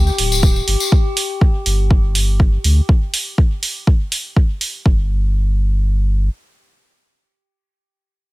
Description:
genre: dub techno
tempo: 122 BPM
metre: 4/4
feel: straight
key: unclear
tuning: A4 = 439 Hz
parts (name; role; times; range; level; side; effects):
- warm sub bass; bass; 0.0-6.3 s; D1 to D2; -16 LUFS; equal; sidechain pumping
- metallic inharmonic drone; texture; 0.0-0.9 s; G4; -26 LUFS; left 3 dB; chorus, built-in reverb, sidechain pumping
- tambourine; percussion; 0.1-0.9 s; none; -22 LUFS; left 4 dB; none
- electronic hi-hat; drums; 0.2-4.7 s; none; -20 LUFS; right 2 dB; none
- electronic kick drum; drums; 0.4-5.0 s; none; -13 LUFS; equal; none
room: little or no reverb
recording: none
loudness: -14 LUFS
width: side -20 dB against mid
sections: 0.0-4.9 A section; 4.9-8.3 B section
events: none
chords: 0.0 G5; 4.9 N.C.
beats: 0.43 | 0.92 1.41 1.90 2.40 | 2.89 3.38 3.87 4.36 | 4.86 5.35 5.84

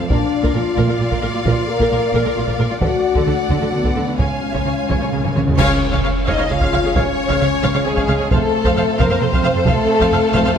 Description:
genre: cinematic, epic orchestral film score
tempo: 132 BPM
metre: 3/4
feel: straight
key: Db major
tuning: A4 = 440 Hz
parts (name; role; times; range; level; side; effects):
- warm symphonic violin section; melody; 0.0-10.6 s; Ab4 to Ab5; -27 LUFS; left 3 dB; none
- warm studio violin section; second line; 0.0-10.6 s; Ab4 to F5; -26 LUFS; left 3 dB; none
- warm symphonic viola section; accompaniment; 0.0-10.5 s; F4 to F5; -23 LUFS; right 1 dB; none
- dark French horn section; sustained chords; 0.0-10.6 s; Ab3 to Bb4; -21 LUFS; left 4 dB; none
- warm symphonic string section; sustained chords; 0.0-10.6 s; Ab3 to Ab5; -27 LUFS; left 1 dB; none
- rich symphonic cello section; bass; 0.0-10.6 s; F2 to D3; -24 LUFS; right 3 dB; none
- warm symphonic double bass section; bass; 0.1-10.4 s; F1 to D2; -23 LUFS; right 3 dB; none
- taiko ensemble; drums; 0.1-10.6 s; none; -22 LUFS; equal; none
- cymbal swell, clash cymbals and concert bass drum; percussion; 2.8-6.5 s; none; -27 LUFS; equal; none
- timpani; percussion; 4.2-6.2 s; Db3; -26 LUFS; right 1 dB; none
- mellow large flute ensemble; second line; 5.6-10.6 s; Ab4 to F5; -27 LUFS; left 2 dB; none
room: moderate scoring stage reverb, RT60 1.8 s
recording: none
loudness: -14 LUFS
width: side -8 dB against mid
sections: 0.0-5.6 A section; 5.6-10.6 A section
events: timpani fill 4.2-5.6; drum fill 5.2-5.6; band accent 5.6-6.0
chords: 0.1 Bb; 2.8 D; 4.2 Db; 8.3 F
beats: | 0.10 0.55 1.00 | 1.45 1.91 2.36 | 2.81 3.27 3.73 | 4.19 4.66 5.12 | 5.59 6.05 6.50 | 6.96 7.41 7.86 | 8.31 8.77 9.22 | 9.67 10.12 10.57

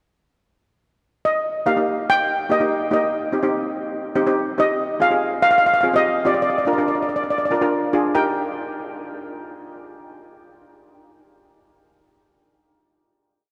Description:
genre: calypso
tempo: 144 BPM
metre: 4/4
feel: straight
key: Eb major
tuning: A4 = 442 Hz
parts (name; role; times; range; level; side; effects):
- steel pan; melody; 1.3-8.3 s; D5 to G5; -22 LUFS; equal; none
- steel pan; accompaniment; 1.7-8.3 s; Bb3 to Bb4; -25 LUFS; equal; none
room: wet cathedral reverb, RT60 5.6 s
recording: in a vast, echoing space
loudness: -20 LUFS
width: mono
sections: 0.0-1.5 pickup bar; 1.5-8.1 verse; 8.1-9.8 final chord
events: none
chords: 0.0 N.C.; 1.5 Eb; 3.1 Cm; 4.8 Fm/C; 6.5 Bb7; 8.1 Eb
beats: 0.20 0.62 1.04 | 1.46 1.87 2.29 2.71 | 3.12 3.54 3.96 4.37 | 4.79 5.21 5.63 6.04 | 6.46 6.88 7.30 7.72 | 8.14

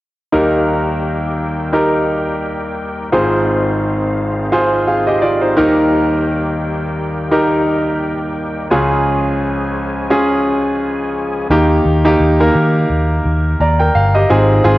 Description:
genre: pop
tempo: 86 BPM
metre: 4/4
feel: swing 56% on 16ths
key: Eb major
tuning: A4 = 440 Hz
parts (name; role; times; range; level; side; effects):
- bright concert grand piano; accompaniment; 0.3-14.8 s; Ab1 to Bb5; -14 LUFS; equal; cassette tape
- overdriven tonewheel organ; sustained chords; 0.3-11.5 s; Eb3 to Ab4; -24 LUFS; left 1 dB; chorus vibrato, wide subtle chorus, cassette tape
- vintage muted picked electric bass; bass; 11.5-14.8 s; G1 to Eb3; -14 LUFS; equal; none
room: moderate lush hall reverb, RT60 2.3 s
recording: home recording on cassette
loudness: -13 LUFS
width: side -17 dB against mid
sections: 0.3-11.5 A section; 11.5-14.8 B section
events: none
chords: 0.3 Eb; 3.1 Ab6; 5.6 Eb; 8.7 Db; 11.5 Eb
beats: | 0.33 1.03 1.73 2.42 | 3.12 3.82 4.52 5.22 | 5.92 6.62 7.32 8.01 | 8.71 9.41 10.11 10.81 | 11.51 12.21 12.90 13.60 | 14.30

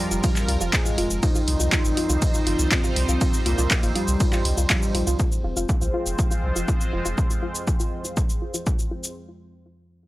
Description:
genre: melodic techno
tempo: 121 BPM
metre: 4/4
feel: straight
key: F minor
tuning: A4 = 438 Hz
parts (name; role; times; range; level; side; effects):
- fat analog lead; melody; 0.0-5.2 s; G3 to Eb4; -28 LUFS; equal; chorus, sidechain pumping, tape echo
- sweeping resonant pad; sustained chords; 0.0-9.1 s; F3 to C5; -32 LUFS; right 2 dB; chorus, sidechain pumping
- analog drone; drone; 0.0-9.2 s; F2 to F3; -37 LUFS; equal; none
- soft round pluck; arpeggios; 0.1-9.0 s; F4; -30 LUFS; equal; chorus, sidechain pumping, tape echo
- round analog bass; bass; 0.1-7.1 s; F1 to C2; -24 LUFS; equal; sidechain pumping
- punchy analog drum machine; drums; 0.1-9.1 s; handclaps, hi-hat, ride cymbal, shaker; -26 LUFS; equal; sidechain pumping on cymbals, sidechain pumping on perc, sidechain pumping on hats
- electronic kick drum; drums; 0.2-8.8 s; none; -23 LUFS; equal; none
room: digital ambience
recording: dry, gritty hardware recording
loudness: -20 LUFS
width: side -18 dB against mid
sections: 0.0-5.2 A section; 5.2-9.2 B section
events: drop 0.0-5.2; filter sweep on synth arpeggio sound 5.2-9.2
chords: 0.0 Fm; 1.2 Cm; 5.2 Fm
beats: 0.24 0.73 | 1.23 1.72 2.22 2.72 | 3.21 3.71 4.20 4.70 | 5.20 5.69 6.19 6.68 | 7.18 7.67 8.17 8.67

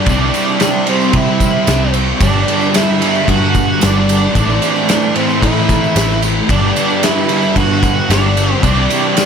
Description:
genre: rock, shoegaze and dream pop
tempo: 112 BPM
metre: 4/4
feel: straight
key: unclear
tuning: A4 = 436 Hz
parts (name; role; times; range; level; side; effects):
- octave-fuzz lead guitar; melody; 0.0-9.3 s; C4 to F#4; -17 LUFS; right 2 dB; distortion, tape echo
- overdriven semi-hollow guitar; riff; 0.0-9.3 s; G2 to A4; -20 LUFS; right 10 dB; reverse reverb
- overdriven semi-hollow guitar; riff; 0.0-9.3 s; G2 to C4; -21 LUFS; equal; tremolo
- thick fuzz guitar; riff; 0.0-9.3 s; G2 to C4; -20 LUFS; left 10 dB; distortion, wide subtle chorus
- vintage muted picked electric bass; bass; 0.1-8.9 s; G1 to C3; -17 LUFS; equal; none
- loose indie drum kit; drums; 0.1-9.3 s; kick drum, ride cymbal, snare drum; -16 LUFS; equal; none
- tambourine; percussion; 0.1-9.3 s; none; -31 LUFS; right 10 dB; none
room: light reverb, studio reverb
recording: none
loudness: -11 LUFS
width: side -7 dB against mid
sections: 0.0-9.3 A section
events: none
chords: 0.1 Cadd9; 2.2 Gmaj7; 4.4 Am; 6.5 Gmaj7; 8.6 Cadd9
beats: | 0.07 0.61 1.14 1.68 | 2.21 2.75 3.28 3.82 | 4.35 4.89 5.42 5.96 | 6.49 7.03 7.56 8.10 | 8.63 9.16

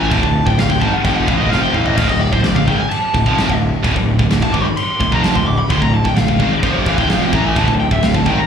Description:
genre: heavy metal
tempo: 129 BPM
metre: 4/4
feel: straight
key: unclear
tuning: A4 = 439 Hz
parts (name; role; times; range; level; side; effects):
- high-gain lead guitar; melody; 0.0-8.5 s; C5 to D6; -20 LUFS; left 1 dB; distortion, slapback echo, ping-pong delay
- scooped high-gain guitar; riff; 0.0-8.4 s; D2 to A3; -22 LUFS; left 9 dB; distortion, slapback echo
- sludgy distorted guitar; riff; 0.0-8.4 s; D2 to A3; -24 LUFS; equal; none
- tight distorted guitar; riff; 0.0-8.4 s; D2 to A3; -21 LUFS; right 8 dB; distortion
- fuzz picked electric bass; bass; 0.0-8.4 s; D1 to A1; -19 LUFS; equal; overdrive
- big rock drum kit; drums; 0.1-8.4 s; china cymbal, crash cymbal, kick drum, snare drum, toms; -19 LUFS; equal; none
room: light reverb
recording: live gig heard through the venue's PA, club reverb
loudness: -13 LUFS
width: side -7 dB against mid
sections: 0.0-8.5 A section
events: lead electric guitar solo 0.0-8.5; drum fill 1.5-2.0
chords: 0.0 Dm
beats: | 0.11 0.58 1.05 1.51 | 1.98 2.44 2.91 3.38 | 3.84 4.31 4.77 5.24 | 5.70 6.17 6.64 7.10 | 7.57 8.03

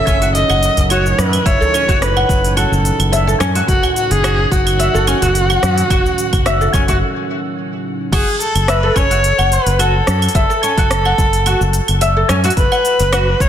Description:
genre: organic downtempo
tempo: 108 BPM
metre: 4/4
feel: swing 53% on 16ths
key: F# dorian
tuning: A4 = 442 Hz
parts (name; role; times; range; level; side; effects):
- rich kamancheh; melody; 0.0-13.5 s; F#4 to E5; -18 LUFS; equal; ping-pong delay
- warm analog pad; sustained chords; 0.0-8.1 s; A2 to C#4; -24 LUFS; right 2 dB; chorus, sidechain pumping
- oud; arpeggios; 0.0-13.3 s; C#4 to F#5; -19 LUFS; left 1 dB; vintage 12-bit sampler grit, ping-pong delay
- fretless electric bass; bass; 0.1-13.5 s; F#1 to F#2; -17 LUFS; equal; none
- electronic kick drum; drums; 0.1-13.5 s; none; -17 LUFS; equal; overdrive
- organic electronic drum kit; drums; 0.1-13.5 s; cabasa, claves, crash cymbal, hi-hat, rim click; -22 LUFS; right 2 dB; overdrive
- udu; percussion; 0.8-6.4 s; none; -22 LUFS; left 1 dB; none
room: moderate echo chamber reverb, RT60 1.9 s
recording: dense, heavily limited modern master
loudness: -12 LUFS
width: side -10 dB against mid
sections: 0.0-8.1 A section; 8.1-13.5 A section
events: break 7.0-8.1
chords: 0.0 F#m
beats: 0.35 0.90 | 1.46 2.02 2.57 3.13 | 3.68 4.24 4.79 5.35 | 5.90 6.46 7.02 7.57 | 8.13 8.68 9.24 9.79 | 10.35 10.90 11.46 12.02 | 12.57 13.13

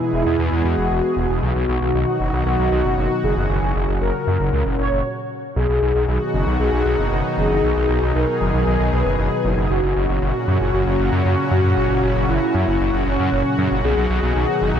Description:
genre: synthwave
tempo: 116 BPM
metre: 4/4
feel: straight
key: B major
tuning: A4 = 441 Hz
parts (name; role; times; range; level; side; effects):
- mellow synth brass; melody; 0.0-14.8 s; C#4 to C#5; -22 LUFS; left 1 dB; chorus, cassette tape, ping-pong delay
- lush unison pad; sustained chords; 0.0-14.8 s; A#2 to G#4; -22 LUFS; equal; chorus
- wide detuned saw bass; bass; 0.1-14.8 s; E1 to F#2; -20 LUFS; equal; chorus
room: moderate lush hall reverb, RT60 2.6 s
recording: dark, warm production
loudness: -17 LUFS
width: side -8 dB against mid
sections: 0.0-5.6 A section; 5.6-14.8 B section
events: stop 5.0-5.6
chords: 0.0 E; 1.4 B; 3.5 F#; 5.6 B; 9.7 F#; 13.8 B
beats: 0.39 0.91 | 1.43 1.94 2.46 2.98 | 3.50 4.01 4.53 5.05 | 5.56 6.08 6.60 7.12 | 7.63 8.15 8.67 9.19 | 9.70 10.22 10.74 11.25 | 11.77 12.29 12.81 13.32 | 13.84 14.36

